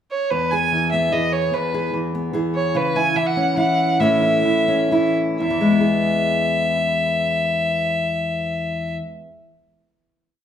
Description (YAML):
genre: indie folk with a building arrangement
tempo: 118-148 BPM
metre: 3/4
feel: straight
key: E major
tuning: A4 = 441 Hz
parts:
  - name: rich fiddle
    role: melody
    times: 0.1-8.9 s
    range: B4 to G#5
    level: -20 LUFS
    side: equal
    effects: none
  - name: fingerpicked steel-string acoustic guitar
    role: accompaniment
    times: 0.3-9.4 s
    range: E2 to G#4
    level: -21 LUFS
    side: left 1 dB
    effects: none
room: moderate large studio reverb, RT60 1.2 s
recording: band playing live in one room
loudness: -17 LUFS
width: side -9 dB against mid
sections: 0.0-0.3 pickup bar; 0.3-5.4 verse; 5.4-8.4 final chord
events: slowing down 2.8-5.4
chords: 0.3 E; 2.8 C#m; 4.0 A; 5.4 E